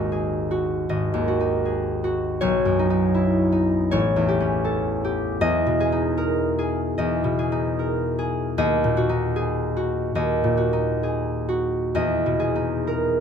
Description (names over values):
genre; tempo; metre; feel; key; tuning
classical, solo harp piece; 63-81 BPM; 4/4; rubato; unclear; A4 = 440 Hz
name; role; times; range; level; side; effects
concert harp; solo; 0.0-13.2 s; G#1 to D#5; -20 LUFS; equal; none
room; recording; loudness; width
moderate small room reverb, RT60 0.5 s; none; -20 LUFS; side -7 dB against mid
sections
0.0-13.2 A section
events
none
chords
0.0 G#5; 2.4 Badd9; 3.9 A7; 5.4 Emaj7#11; 8.6 D#m; 11.9 Emaj7